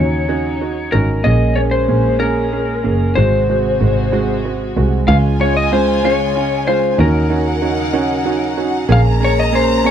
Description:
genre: six-eight pop ballad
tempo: 63 BPM (dotted quarters)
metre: 6/8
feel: straight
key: Db major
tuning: A4 = 439 Hz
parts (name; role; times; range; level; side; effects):
- electric slide guitar; melody; 0.0-9.9 s; Bb4 to F5; -18 LUFS; left 4 dB; none
- warm upright piano; accompaniment; 0.0-9.9 s; Ab3 to Ab4; -19 LUFS; right 8 dB; none
- warm studio string section; sustained chords; 0.0-9.9 s; Bb2 to Gb4; -24 LUFS; left 3 dB; none
- muted double bass; bass; 0.0-9.9 s; Gb1 to Eb2; -17 LUFS; equal; none
- warm studio violin section; second line; 5.1-9.9 s; Gb5 to Bb5; -24 LUFS; left 2 dB; none
room: small room ambience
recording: dry, close 1970s-style studio recording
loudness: -13 LUFS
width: side -9 dB against mid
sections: 0.0-5.1 A section; 5.1-9.9 B section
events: none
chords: 0.0 Ebm7; 1.3 Bbm7; 3.2 Ab7; 5.1 Db; 7.0 Ebm7; 8.9 Bbm7

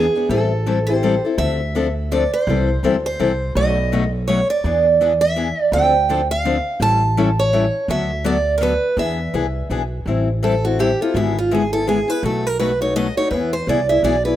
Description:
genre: acoustic string swing (jazz manouche)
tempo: 166 BPM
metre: 3/4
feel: swing 60% on 8ths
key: A minor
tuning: A4 = 440 Hz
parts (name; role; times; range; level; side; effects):
- picked steel-string acoustic guitar; melody; 0.0-14.4 s; E4 to A5; -19 LUFS; right 3 dB; none
- picked steel-string acoustic guitar; accompaniment; 0.0-14.4 s; B2 to A4; -21 LUFS; left 5 dB; none
- upright bass; bass; 0.0-14.3 s; G#1 to E2; -22 LUFS; equal; none
room: light reverb, small room ambience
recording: rough home demo mix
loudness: -16 LUFS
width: side -12 dB against mid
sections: 0.0-1.4 A section; 1.4-10.1 B section; 10.1-14.4 C section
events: steel-string acoustic guitar solo 10.1-14.4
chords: 0.3 Am7; 1.4 Dm7; 2.5 Am7/C; 3.6 B7; 4.6 E7; 5.7 Dm7; 6.8 A7; 7.9 D6; 9.0 E7; 10.1 Am7; 11.1 E7/G#; 12.2 B7; 13.3 E

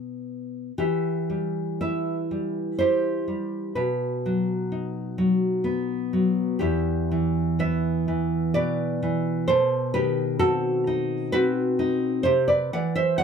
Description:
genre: romantic piece for solo classical guitar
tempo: 56-66 BPM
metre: 3/4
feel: rubato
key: E minor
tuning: A4 = 441 Hz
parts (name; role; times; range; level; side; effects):
- nylon-string guitar; solo; 0.0-13.2 s; E2 to F#5; -22 LUFS; equal; none
room: wet booth ambience, RT60 0.3 s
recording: none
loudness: -22 LUFS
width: side -6 dB against mid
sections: 0.8-13.2 A section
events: none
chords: 0.0 B; 0.8 Em; 3.8 B; 6.6 Em; 9.5 B7b9; 12.2 C

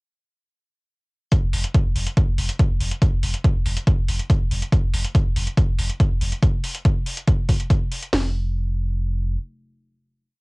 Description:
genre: driving peak-time techno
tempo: 141 BPM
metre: 4/4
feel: straight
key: unclear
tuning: A4 = 441 Hz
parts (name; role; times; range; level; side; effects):
- electronic hi-hat; drums; 1.3-8.1 s; none; -30 LUFS; left 1 dB; sidechain pumping on hats
- techno drum kit; drums; 1.3-8.2 s; hi-hat, kick drum, snare drum; -18 LUFS; equal; none
- saturated sub bass; bass; 1.4-9.4 s; F1; -24 LUFS; equal; tube saturation, sidechain pumping, low-pass filter
room: little or no reverb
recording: home recording on cassette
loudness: -19 LUFS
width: side -31 dB against mid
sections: 1.3-8.1 groove; 8.1-10.4 final note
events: none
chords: none

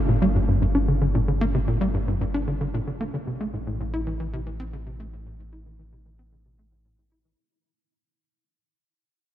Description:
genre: ambient, sequencer-driven space music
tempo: 113 BPM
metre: 4/4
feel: straight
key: unclear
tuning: A4 = 437 Hz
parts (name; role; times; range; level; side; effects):
- warm sub bass; bass; 0.0-7.4 s; G1 to A1; -28 LUFS; equal; none
- tight sequencer bass; riff; 0.1-7.3 s; G2 to E4; -24 LUFS; equal; lush chorus, ping-pong delay
room: moderate cathedral reverb, RT60 5.7 s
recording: in a vast, echoing space, cassette tape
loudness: -22 LUFS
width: side -12 dB against mid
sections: 0.0-7.4 A section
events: fade-out on analog synth bass 0.0-7.4; fade-out 0.0-7.4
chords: 0.0 Gm; 3.1 Am

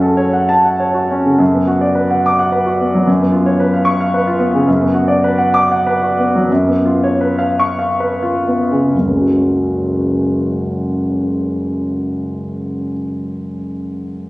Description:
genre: classical, romantic character piece for solo piano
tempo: 62-114 BPM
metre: 3/4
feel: rubato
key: F# minor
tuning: A4 = 439 Hz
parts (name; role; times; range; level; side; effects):
- clear concert grand piano; solo; 0.0-14.3 s; F#1 to D6; -13 LUFS; equal; none
room: moderate scoring stage reverb, RT60 1.6 s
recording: recorded on a phone in the room, club reverb, compression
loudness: -13 LUFS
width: side -19 dB against mid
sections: 0.0-1.4 A section; 1.4-8.9 B section; 8.9-14.3 C section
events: slowing down 3.9-8.9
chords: 0.0 F#m; 1.4 Bm/F#; 3.1 C#7/F#; 4.7 Bm/F#; 6.5 C#7/F#; 8.9 F#m

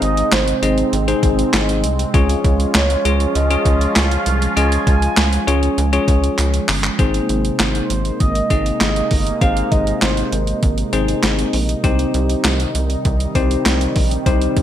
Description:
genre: synth-pop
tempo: 99 BPM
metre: 4/4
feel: straight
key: Ab major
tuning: A4 = 441 Hz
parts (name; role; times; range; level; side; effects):
- mellow horn-like synth lead; melody; 0.0-10.6 s; C5 to Ab5; -23 LUFS; right 2 dB; chorus, ping-pong delay
- bell-like tine electric piano; accompaniment; 0.0-14.6 s; C4 to Eb5; -21 LUFS; left 5 dB; none
- sweeping resonant pad; sustained chords; 0.0-14.6 s; C3 to F4; -22 LUFS; right 2 dB; wide subtle chorus
- rubbery square bass; bass; 0.0-14.6 s; G1 to Db2; -19 LUFS; equal; none
- clean 12-bit digital drum machine; drums; 0.0-14.6 s; handclaps, hi-hat, kick drum, snare drum; -18 LUFS; equal; gated reverb
room: moderate plate reverb, RT60 2.0 s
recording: bright 1980s-style digital production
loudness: -14 LUFS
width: side -11 dB against mid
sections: 0.0-7.0 A section; 7.0-14.6 B section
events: drum fill 6.4-7.0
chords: 0.0 Ab; 2.1 Db; 7.0 Abadd9; 11.8 Cm

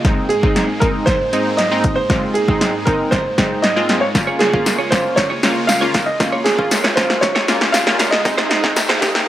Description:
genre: dance-pop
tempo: 117 BPM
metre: 4/4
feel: straight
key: Ab major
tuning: A4 = 440 Hz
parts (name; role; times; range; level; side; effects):
- funky polysynth comp; accompaniment; 0.0-9.3 s; Ab3 to F4; -21 LUFS; left 1 dB; chorus, sidechain pumping
- supersaw pad; sustained chords; 0.0-9.3 s; Ab2 to F4; -26 LUFS; right 1 dB; sidechain pumping
- punchy analog drum machine; drums; 0.0-9.3 s; hi-hat, kick drum, snare drum; -17 LUFS; equal; none
- clear concert grand piano; melody; 0.3-9.1 s; Eb4 to F5; -19 LUFS; right 2 dB; none
- direct-recorded clean electric guitar; riff; 4.1-9.2 s; Bb3 to Db5; -23 LUFS; right 3 dB; wide subtle chorus
- tambourine; percussion; 4.1-9.1 s; none; -29 LUFS; left 4 dB; none
- riser; sound effects; 6.7-9.3 s; none; -28 LUFS; equal; none
room: light reverb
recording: dry, gritty hardware recording, high-pass filter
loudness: -14 LUFS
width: side -13 dB against mid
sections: 0.0-9.3 A section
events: build-up 0.0-9.3; drum fill 0.0-9.3; filter sweep 0.0-9.3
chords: 0.0 Ab; 4.2 Db6; 8.3 Ab

